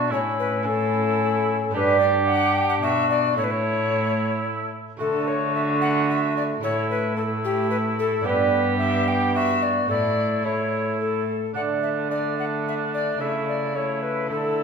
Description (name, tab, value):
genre	classical, renaissance-style consort dance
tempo	110 BPM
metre	3/4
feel	straight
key	D major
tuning	A4 = 440 Hz
part	alto recorder	melody	0.0-14.6 s	G4 to G5	-26 LUFS	left 4 dB	none
part	warm cor anglais	second line	0.0-14.6 s	D4 to G4	-26 LUFS	right 2 dB	none
part	lute	accompaniment	0.0-14.6 s	G2 to D5	-29 LUFS	right 8 dB	none
part	mellow bassoon	accompaniment	0.0-14.6 s	A3 to D4	-28 LUFS	left 3 dB	none
part	rich cello	bass	0.0-14.6 s	G2 to D3	-28 LUFS	right 2 dB	none
room	wet recital hall reverb, RT60 1.4 s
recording	recorded in a church or concert hall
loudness	-20 LUFS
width	side -6 dB against mid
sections	0.0-11.6 A section; 11.6-14.6 B section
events	none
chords	0.1 A; 1.7 G; 3.4 A; 5.0 D; 6.6 A5; 8.3 G; 9.9 A; 11.6 D5; 13.2 A/C#